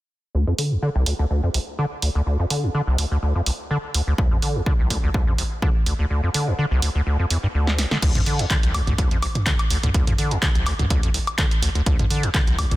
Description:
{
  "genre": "acid house",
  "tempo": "125 BPM",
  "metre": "4/4",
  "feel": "swing 54% on 16ths",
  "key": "D minor",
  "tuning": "A4 = 440 Hz",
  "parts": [
    { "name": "acid bass, square", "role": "riff", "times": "0.3-12.8 s", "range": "C2 to D3", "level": "-22 LUFS", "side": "equal", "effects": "overdrive, wide subtle chorus, sidechain pumping" },
    { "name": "punchy analog drum machine", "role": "drums", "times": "0.6-12.8 s", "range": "crash cymbal, handclaps, hi-hat, snare drum, toms, woodblock", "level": "-24 LUFS", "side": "right 1 dB", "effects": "small room ambience" },
    { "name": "electronic kick drum", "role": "drums", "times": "4.2-12.7 s", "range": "none", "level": "-21 LUFS", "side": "equal", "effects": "small room ambience" }
  ],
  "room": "little or no reverb",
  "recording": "dense, heavily limited modern master",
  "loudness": "-19 LUFS",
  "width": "side -17 dB against mid",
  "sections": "0.3-8.0 A section; 8.0-12.8 B section",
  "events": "filter sweep on acid bass 0.3-8.0; kick drops out 6.1-8.0; drum fill 7.7-8.0",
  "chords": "none"
}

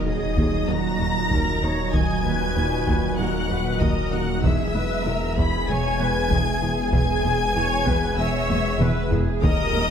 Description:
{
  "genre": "cinematic, hybrid orchestral and electronic film score",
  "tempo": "96 BPM",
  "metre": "4/4",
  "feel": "straight",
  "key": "unclear",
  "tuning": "A4 = 440 Hz",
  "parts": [
    { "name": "rich symphonic viola section", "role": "accompaniment", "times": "0.0-9.9 s", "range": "Gb4 to Eb5", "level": "-30 LUFS", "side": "right 2 dB", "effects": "none" },
    { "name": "mellow French horn section", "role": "sustained chords", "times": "0.0-9.9 s", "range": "Bb2 to G#4", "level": "-32 LUFS", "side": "left 4 dB", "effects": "none" },
    { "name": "warbly tape-like pad", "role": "sustained chords", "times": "0.0-9.9 s", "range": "Bb2 to Bb5", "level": "-29 LUFS", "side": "right 2 dB", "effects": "chorus, built-in reverb" },
    { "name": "detuned saw bass", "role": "bass", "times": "0.0-9.9 s", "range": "Eb1 to E1", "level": "-29 LUFS", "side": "equal", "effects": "none" },
    { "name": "impact", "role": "sound effects", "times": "0.0-1.9 s", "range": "none", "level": "-37 LUFS", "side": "left 1 dB", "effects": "none" },
    { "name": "clear studio violin section", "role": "melody", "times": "0.1-9.9 s", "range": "Eb6 to B6", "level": "-30 LUFS", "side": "left 2 dB", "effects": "none" },
    { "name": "warm symphonic violin section", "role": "second line", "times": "0.1-9.9 s", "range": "Eb5 to B5", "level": "-28 LUFS", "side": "left 3 dB", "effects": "none" },
    { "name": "soft round pluck", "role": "arpeggios", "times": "0.1-9.9 s", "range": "Eb3 to E4", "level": "-33 LUFS", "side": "left 5 dB", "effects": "chorus, digital delay" },
    { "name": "clear symphonic double bass section", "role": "bass", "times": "0.1-9.8 s", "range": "E1 to Eb2", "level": "-29 LUFS", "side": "right 3 dB", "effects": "none" },
    { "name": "rich chamber cello section", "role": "bass", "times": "0.1-9.8 s", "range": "Eb2 to E2", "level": "-30 LUFS", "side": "right 2 dB", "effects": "none" },
    { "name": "solo taiko drums", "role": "drums", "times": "0.4-9.9 s", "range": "none", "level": "-26 LUFS", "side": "equal", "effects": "none" }
  ],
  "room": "moderate scoring stage reverb, RT60 2.0 s",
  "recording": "none",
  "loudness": "-20 LUFS",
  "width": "side -8 dB against mid",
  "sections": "0.0-9.9 A section",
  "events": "impact 0.0-1.9; drum fill 8.5-9.4",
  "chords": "0.0 Ebm; 4.4 E"
}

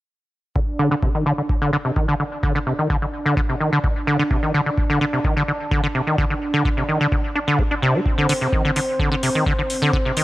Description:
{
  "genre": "acid house",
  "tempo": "128 BPM",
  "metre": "4/4",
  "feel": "straight",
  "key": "unclear",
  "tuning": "A4 = 441 Hz",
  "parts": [
    { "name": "warm analog pad", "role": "sustained chords", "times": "0.6-10.2 s", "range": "C4 to D5", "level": "-27 LUFS", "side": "right 1 dB", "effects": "chorus, sidechain pumping" },
    { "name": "acid bass, saw", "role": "riff", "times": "0.6-10.2 s", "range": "C3 to D4", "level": "-20 LUFS", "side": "equal", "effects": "tube saturation, analog chorus, sidechain pumping, tape echo" },
    { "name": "electronic kick drum", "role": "drums", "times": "0.6-10.0 s", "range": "none", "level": "-22 LUFS", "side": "equal", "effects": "none" },
    { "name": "electronic hi-hat", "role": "drums", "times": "8.3-10.2 s", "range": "none", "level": "-28 LUFS", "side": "left 2 dB", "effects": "none" }
  ],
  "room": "little or no reverb",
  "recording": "dry, gritty hardware recording",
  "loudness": "-18 LUFS",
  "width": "side -16 dB against mid",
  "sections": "0.6-10.2 A section",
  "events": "filter sweep on acid bass 0.6-10.2",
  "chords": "0.6 D5"
}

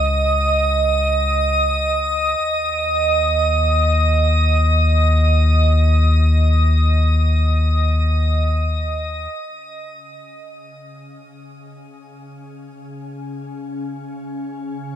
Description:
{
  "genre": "ambient",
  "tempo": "free time",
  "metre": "none",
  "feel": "none",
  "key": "unclear",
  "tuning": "A4 = 441 Hz",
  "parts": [
    { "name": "warm sub bass", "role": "bass", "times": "0.0-9.3 s", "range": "C#2 to D#2", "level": "-16 LUFS", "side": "left 1 dB", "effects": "none" },
    { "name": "drifting glass-harmonics texture", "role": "texture", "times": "0.0-9.4 s", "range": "D#5 to D#6", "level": "-20 LUFS", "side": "right 2 dB", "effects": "chorus, built-in reverb" },
    { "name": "organ-like drone", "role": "drone", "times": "10.8-15.0 s", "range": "C#3 to C#4", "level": "-31 LUFS", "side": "left 2 dB", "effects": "ensemble chorus, built-in reverb" }
  ],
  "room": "moderate shimmer reverb, RT60 7.2 s",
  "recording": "cassette tape",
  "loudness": "-15 LUFS",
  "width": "side -10 dB against mid",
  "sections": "0.0-9.3 A section; 9.3-15.0 B section",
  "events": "none",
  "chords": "0.0 C#sus2; 2.4 N.C."
}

